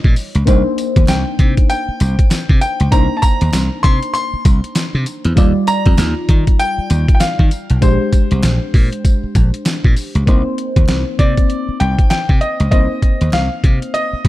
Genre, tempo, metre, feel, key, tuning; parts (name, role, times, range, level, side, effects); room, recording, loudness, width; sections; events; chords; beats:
R&B, new jack swing; 98 BPM; 4/4; swing 60% on 16ths; C minor; A4 = 440 Hz
mellow FM electric piano; accompaniment; 0.0-14.3 s; G3 to Eb5; -22 LUFS; left 2 dB; chorus, phaser
slap bass; bass; 0.0-14.3 s; Bb1 to Eb3; -15 LUFS; equal
boom bap sampler-style drum kit; drums; 0.0-14.3 s; hi-hat, kick drum, snare drum, tambourine; -13 LUFS; equal
clear baby grand piano; melody; 1.1-14.3 s; C5 to C6; -21 LUFS; equal; ping-pong delay
group handclap; percussion; 1.1-13.5 s; -34 LUFS; right 5 dB
digital ambience; dark, warm production; -12 LUFS; side -16 dB against mid
0.0-10.3 A section; 10.3-14.3 B section
0.5 Cm9; 5.4 Ebmaj9; 7.8 Bb13; 10.3 Cm7
| 0.47 1.09 1.70 2.31 | 2.92 3.54 4.15 4.76 | 5.37 5.98 6.60 7.21 | 7.82 8.43 9.04 9.66 | 10.27 10.88 11.49 12.11 | 12.72 13.33 13.94